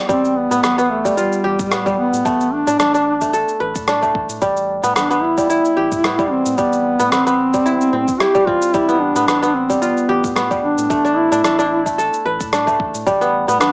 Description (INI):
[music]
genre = organic downtempo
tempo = 111 BPM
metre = 4/4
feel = swing 55% on 16ths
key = A minor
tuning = A4 = 440 Hz
[part]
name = kora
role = arpeggios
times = 0.0-13.7 s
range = G3 to B4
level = -16 LUFS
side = equal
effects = cassette tape, tape echo
[part]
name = mellow duduk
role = melody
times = 0.1-13.7 s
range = G3 to G4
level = -17 LUFS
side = equal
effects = cassette tape
[part]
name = round analog bass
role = bass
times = 0.1-13.7 s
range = E1 to A2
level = -33 LUFS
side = equal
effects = sidechain pumping
[part]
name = electronic kick drum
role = drums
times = 0.1-13.2 s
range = none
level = -28 LUFS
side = equal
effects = cassette tape
[part]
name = electronic shaker and rim click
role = drums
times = 0.1-13.7 s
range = none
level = -23 LUFS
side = equal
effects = cassette tape
[sound]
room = wet booth ambience, RT60 0.2 s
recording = home recording on cassette, small speaker sound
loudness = -14 LUFS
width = side -28 dB against mid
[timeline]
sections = 0.0-13.7 A section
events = none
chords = 0.1 G9/A; 2.3 Asus24; 4.4 Am9; 8.7 G9/A; 10.9 E7sus4/A; 13.1 A7sus2